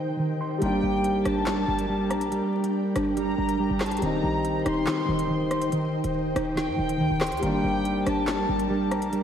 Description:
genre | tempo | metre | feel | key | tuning
hip hop, drill | 141 BPM | 4/4 | half-time | G minor | A4 = 440 Hz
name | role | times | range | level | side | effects
dark concert grand piano | accompaniment | 0.0-9.2 s | G3 to Eb4 | -31 LUFS | left 2 dB | wide subtle chorus
ethereal airy pad | sustained chords | 0.0-9.2 s | D4 to G5 | -32 LUFS | right 1 dB | ensemble chorus, built-in reverb
mellow electric guitar | arpeggios | 0.0-9.2 s | Eb3 to C6 | -26 LUFS | right 1 dB | tape echo
warm studio violin section | second line | 0.6-9.1 s | G5 to C6 | -32 LUFS | left 2 dB | tape echo
short 808-style bass | bass | 0.6-9.2 s | Eb1 to G2 | -34 LUFS | equal | none
drill drum kit | drums | 0.6-9.2 s | handclaps, hi-hat, rim click, snare drum | -33 LUFS | left 1 dB | none
room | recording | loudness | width
wet lush hall reverb, RT60 1.7 s | dreamy mix soaked in reverb, vinyl crackle | -23 LUFS | side -8 dB against mid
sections
0.6-9.2 A section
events
break 0.0-0.6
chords
0.0 Eb6; 0.6 Gm; 4.0 Eb6; 7.4 Gm

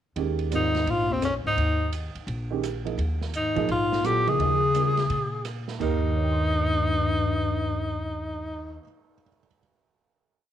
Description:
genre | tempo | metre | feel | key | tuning
modal jazz | 170 BPM | 4/4 | swing 64% on 8ths | Eb mixolydian | A4 = 441 Hz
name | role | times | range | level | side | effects
warm baby grand piano | accompaniment | 0.2-9.6 s | Eb2 to Db7 | -31 LUFS | right 10 dB | none
upright bass | bass | 0.2-8.8 s | Bb1 to Bb2 | -29 LUFS | equal | none
open jazz drum kit | drums | 0.2-8.6 s | crash cymbal, cymbal swell, hi-hat, kick drum, ride cymbal, rim click, snare drum | -40 LUFS | right 7 dB | none
dark bass clarinet | second line | 0.5-8.8 s | Eb2 to Db3 | -29 LUFS | left 6 dB | none
clear tenor saxophone | melody | 0.6-8.8 s | C4 to Ab4 | -26 LUFS | right 1 dB | none
room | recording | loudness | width
light reverb, small room reverb | 1960s-style stereo with parts hard left and right | -23 LUFS | side -10 dB against mid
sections
0.2-5.8 A section; 5.8-8.6 final chord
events
none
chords
0.2 Eb9sus4; 5.8 Eb

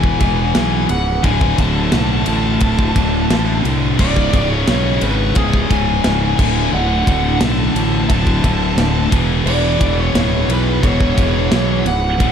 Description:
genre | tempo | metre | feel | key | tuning
heavy metal | 88 BPM | 4/4 | straight | unclear | A4 = 440 Hz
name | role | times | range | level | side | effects
high-gain lead guitar | melody | 0.0-12.3 s | G#4 to A5 | -22 LUFS | left 1 dB | distortion, tape echo
pipe organ, full organ | sustained chords | 0.0-12.3 s | C#3 to G#4 | -30 LUFS | left 1 dB | none
distorted electric guitar | riff | 0.0-12.3 s | C#2 to E3 | -24 LUFS | left 2 dB | overdrive
high-gain distorted guitar | riff | 0.0-12.3 s | C#2 to E3 | -22 LUFS | left 12 dB | distortion
scooped high-gain guitar | riff | 0.0-12.3 s | C#2 to E3 | -23 LUFS | right 10 dB | distortion
fuzz fingered electric bass | bass | 0.0-12.3 s | C#1 to B#1 | -18 LUFS | equal | overdrive
tight metal drum kit | drums | 0.0-12.3 s | crash cymbal, kick drum, ride cymbal, snare drum | -19 LUFS | equal | none
room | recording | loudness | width
light reverb | dark, warm production | -13 LUFS | side -8 dB against mid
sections
0.0-12.3 A section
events
none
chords
0.0 E; 1.2 D; 4.0 C#m; 6.4 D; 9.1 E

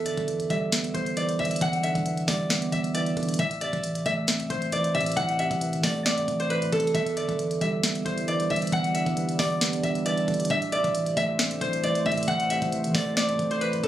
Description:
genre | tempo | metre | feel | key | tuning
hip hop, trap | 135 BPM | 4/4 | half-time | E minor | A4 = 440 Hz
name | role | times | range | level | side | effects
concert harp | melody | 0.0-13.9 s | A4 to F#5 | -26 LUFS | equal | low-pass filter
tine electric piano | accompaniment | 0.0-13.9 s | E2 to C4 | -29 LUFS | right 1 dB | low-pass filter
clean 808-style bass | bass | 0.0-13.9 s | E1 to E3 | -40 LUFS | equal | none
trap drum kit | drums | 0.1-13.9 s | hi-hat, kick drum, snare drum | -28 LUFS | equal | none
deep dark ambient pad | sustained chords | 7.7-13.9 s | G3 to D5 | -33 LUFS | right 2 dB | chorus, built-in reverb
room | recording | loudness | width
little or no reverb | recorded on a phone in the room, studio ambience, compression | -23 LUFS | side -12 dB against mid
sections
0.0-13.9 A section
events
none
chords
0.0 Em7; 3.4 Am; 6.9 Em7; 10.5 Am

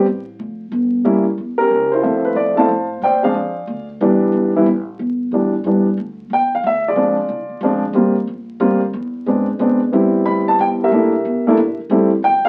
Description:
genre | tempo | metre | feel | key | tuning
jazz piano trio | 182 BPM | 3/4 | swing 64% on 8ths | C major | A4 = 440 Hz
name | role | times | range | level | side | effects
warm grand piano | melody | 0.0-12.5 s | E3 to B5 | -17 LUFS | equal | none
upright bass | bass | 0.0-12.5 s | F1 to B2 | -27 LUFS | equal | none
room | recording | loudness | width
wet small room reverb, RT60 0.5 s | very old 78 rpm record, vinyl crackle | -17 LUFS | mono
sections
0.0-6.0 A section; 6.0-12.5 B section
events
none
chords
0.1 Fadd9; 1.0 A7b9; 2.0 Dm9; 3.0 Bb9; 4.0 Cmaj9; 6.0 Dsus2; 7.0 Bb7; 8.0 Eb69; 8.9 E7b13; 9.9 Am9; 10.9 C13; 11.9 Fmaj9 (rootless)

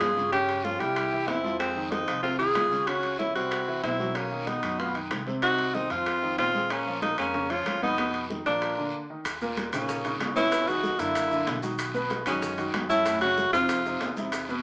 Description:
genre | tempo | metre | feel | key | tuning
Afro-Cuban jazz | 188 BPM | 4/4 | straight | Bb minor | A4 = 440 Hz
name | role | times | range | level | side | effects
bright alto saxophone | melody | 0.0-14.1 s | C4 to Ab4 | -26 LUFS | equal | none
breathy tenor saxophone | second line | 0.0-14.1 s | Ab3 to F4 | -34 LUFS | equal | none
warm baby grand piano | accompaniment | 0.0-14.6 s | A2 to Cb5 | -32 LUFS | equal | none
upright bass | bass | 0.0-14.6 s | Bb1 to G2 | -41 LUFS | equal | none
bongos | percussion | 0.0-14.5 s | none | -38 LUFS | equal | none
claves | percussion | 0.0-14.5 s | none | -42 LUFS | left 1 dB | none
congas | percussion | 0.0-14.6 s | none | -40 LUFS | equal | none
guiro | percussion | 0.0-14.6 s | none | -44 LUFS | equal | none
timbales | percussion | 0.0-14.5 s | none | -36 LUFS | equal | none
maracas | percussion | 9.3-14.6 s | none | -45 LUFS | equal | none
room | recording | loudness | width
moderate studio reverb, RT60 0.7 s | band playing live in one room, small speaker sound | -24 LUFS | side -30 dB against mid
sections
0.0-9.3 A section; 9.3-14.6 B section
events
break 8.9-9.3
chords
0.3 Dbmaj7#11; 1.0 C; 1.6 Fm7; 2.9 Dbm; 3.5 C; 4.2 Bmaj7; 5.4 Cdim; 6.1 F5; 6.7 Bbm7; 8.0 Bmaj7#11; 8.6 Bb; 9.3 Eb5; 10.5 Dbm9; 11.2 Gbaug7; 11.8 B69; 13.1 Gbm7; 13.7 F5

